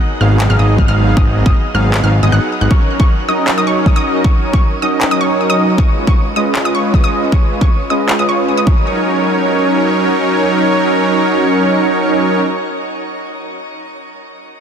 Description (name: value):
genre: future bass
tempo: 156 BPM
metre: 4/4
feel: half-time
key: Eb minor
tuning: A4 = 441 Hz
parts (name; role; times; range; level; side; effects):
- wide unison pluck; arpeggios; 0.2-12.4 s; Db6 to Gb6; -21 LUFS; equal; sidechain pumping, ping-pong delay
- soft supersaw; riff; 0.2-12.4 s; Gb3 to Gb5; -14 LUFS; right 1 dB; sidechain pumping, low-pass filter, ping-pong delay
- fat analog bass; bass; 0.2-2.7 s; Ab1; -12 LUFS; equal; sidechain pumping
- electronic finger snaps and handclaps; drums; 0.4-8.2 s; none; -24 LUFS; left 1 dB; none
- electronic kick drum; drums; 0.8-8.7 s; none; -12 LUFS; equal; overdrive
room: light reverb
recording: dense, heavily limited modern master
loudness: -11 LUFS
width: side -7 dB against mid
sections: 0.0-8.9 A section; 8.9-11.9 B section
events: filter sweep on supersaw synth 0.0-8.9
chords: 0.0 Abm7; 2.7 Ebm7; 5.8 Db7; 8.7 Ebm7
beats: 0.01 0.40 0.78 | 1.17 1.55 1.94 2.32 | 2.71 3.09 3.48 3.86 | 4.25 4.63 5.01 5.40 | 5.78 6.17 6.55 6.94 | 7.32 7.71 8.09 8.48 | 8.86 9.24 9.63 10.01 | 10.40 10.78 11.17 11.55